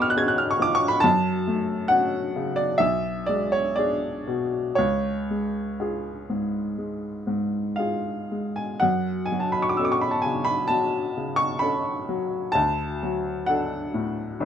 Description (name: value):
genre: classical, romantic nocturne for solo piano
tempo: 57-69 BPM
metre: 4/4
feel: rubato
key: F# minor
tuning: A4 = 439 Hz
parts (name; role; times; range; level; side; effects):
- clear upright piano; solo; 0.0-14.4 s; G#1 to G#6; -22 LUFS; equal; none
room: moderate small room reverb, RT60 0.5 s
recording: none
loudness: -22 LUFS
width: side -9 dB against mid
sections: 0.0-14.4 A section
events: none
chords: 0.0 C#7/E#; 1.0 F#m; 2.8 G#dim/B; 4.8 C#; 8.8 F#m; 12.6 D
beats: 0.17 | 1.04 1.92 2.80 3.76 | 4.78 5.80 6.78 7.78 | 8.82 9.79 10.71 11.63 | 12.56 13.49 14.40